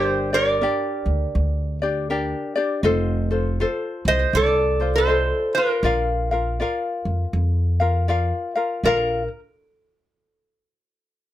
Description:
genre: Hawaiian.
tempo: 80 BPM.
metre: 4/4.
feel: swing 62% on 8ths.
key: Bb major.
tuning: A4 = 440 Hz.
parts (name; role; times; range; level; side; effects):
metal-body resonator slide guitar; melody; 0.0-9.3 s; F4 to Eb5; -20 LUFS; right 1 dB; slapback echo.
ukulele; accompaniment; 0.0-9.2 s; D4 to F5; -24 LUFS; left 3 dB; none.
upright bass; bass; 0.0-9.3 s; F1 to F2; -23 LUFS; equal; none.
room: little or no reverb.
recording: close, detailed microphones.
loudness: -19 LUFS.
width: side -13 dB against mid.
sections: 0.0-8.8 A section; 8.8-11.3 B section.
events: none.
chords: 0.0 Gm; 2.8 F7; 5.8 Bb.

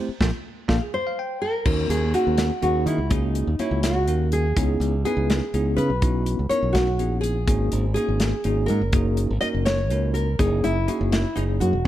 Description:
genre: electric jazz fusion.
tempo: 82 BPM (dotted quarters).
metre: 6/8.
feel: straight.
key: unclear.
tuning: A4 = 438 Hz.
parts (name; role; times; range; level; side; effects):
bell-like tine electric piano; accompaniment; 0.0-11.9 s; A#3 to G5; -27 LUFS; left 1 dB; medium stereo tremolo.
modern bright fingered electric bass; bass; 0.1-11.8 s; E1 to D#3; -23 LUFS; equal; none.
modern studio drum kit; drums; 0.2-11.9 s; crash cymbal, hi-hat, kick drum, snare drum; -25 LUFS; equal; none.
nylon-string guitar; melody; 0.9-11.9 s; D#4 to D#5; -26 LUFS; equal; none.
room: little or no reverb.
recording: dark, warm production.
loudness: -20 LUFS.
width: side -13 dB against mid.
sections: 0.0-1.7 A section; 1.7-11.9 B section.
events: band accent 0.2-1.7; drum fill 0.9-1.7.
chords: 0.2 A#5; 1.7 D#m7; 4.6 C#m9; 7.5 G#9sus4; 10.4 F#13.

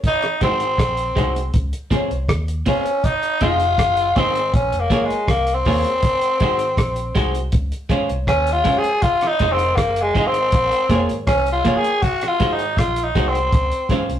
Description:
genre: roots reggae.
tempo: 80 BPM.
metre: 4/4.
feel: straight.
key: Ab mixolydian.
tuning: A4 = 440 Hz.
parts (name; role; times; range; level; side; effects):
cloth-damped thuddy drum kit; drums; 0.0-14.2 s; hi-hat, kick drum, rim click; -21 LUFS; equal; none.
raspy tenor saxophone; melody; 0.1-14.0 s; Ab3 to Ab4; -19 LUFS; left 1 dB; none.
electric guitar at the edge of break-up; accompaniment; 0.4-14.1 s; Ab3 to Db5; -22 LUFS; right 2 dB; tremolo.
dark upright piano; stabs; 0.4-14.1 s; Db4 to Eb5; -27 LUFS; left 2 dB; none.
vintage muted fingered electric bass; bass; 0.4-14.2 s; F1 to Eb2; -25 LUFS; equal; none.
room: moderate studio reverb, RT60 0.6 s.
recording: rough rehearsal-room recording, tube saturation.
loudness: -16 LUFS.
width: side -10 dB against mid.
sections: 0.0-14.2 A section.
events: tenor saxophone solo 0.0-14.2.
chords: 0.0 Ab7; 1.5 Dbmaj7; 3.0 Fm7; 4.5 Bbm7; 6.0 Ab7; 7.5 Dbmaj7; 9.0 Fm7; 10.5 Bbm7; 12.0 Ab7; 13.5 Dbmaj7.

